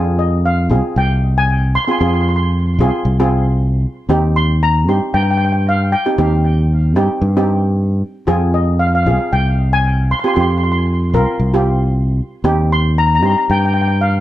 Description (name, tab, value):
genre	calypso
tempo	115 BPM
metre	4/4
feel	straight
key	F minor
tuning	A4 = 440 Hz
part	steel pan	accompaniment	0.0-13.9 s	C4 to Bb4	-19 LUFS	right 1 dB	none
part	fingered electric bass	bass	0.0-14.2 s	C2 to G2	-14 LUFS	equal	none
part	steel pan	melody	0.2-14.2 s	Eb5 to C6	-18 LUFS	left 2 dB	digital delay
room	light reverb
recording	dark, warm production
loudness	-13 LUFS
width	side -14 dB against mid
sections	0.0-14.2 A section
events	none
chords	0.0 Fm; 4.1 Cm/Eb; 8.3 Fm; 12.5 Cm/Eb